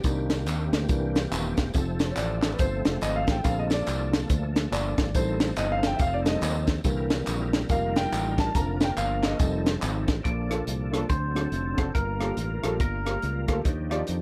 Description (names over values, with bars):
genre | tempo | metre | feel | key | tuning
uptempo gospel | 141 BPM | 4/4 | swing 61% on 8ths | Bb major | A4 = 440 Hz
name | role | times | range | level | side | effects
warm grand piano | accompaniment | 0.0-14.2 s | G2 to Bb5 | -33 LUFS | equal | none
bright tonewheel organ | sustained chords | 0.0-14.2 s | Eb3 to Bb4 | -37 LUFS | equal | fast rotary speaker, chorus vibrato
fingered electric bass | bass | 0.0-14.2 s | Eb1 to F2 | -32 LUFS | equal | none
crisp fusion drum kit | drums | 0.0-14.2 s | hi-hat, kick drum, rim click, snare drum | -29 LUFS | equal | none
tambourine and handclaps | percussion | 0.0-10.2 s | none | -40 LUFS | equal | none
clean electric guitar | melody | 10.2-13.5 s | Bb4 to D5 | -37 LUFS | equal | phaser
room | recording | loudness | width
little or no reverb | none | -26 LUFS | mono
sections
0.0-10.2 A section; 10.2-14.2 B section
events
grand piano solo 0.0-10.2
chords
0.0 Cm7; 0.9 C7; 1.7 F; 3.4 Bbmaj7; 5.1 F7; 6.8 C7; 7.7 F9sus4; 8.5 Bb/F; 9.4 F7; 10.2 Bbmaj7; 11.1 D7; 12.0 Gm9; 13.7 Ebmaj9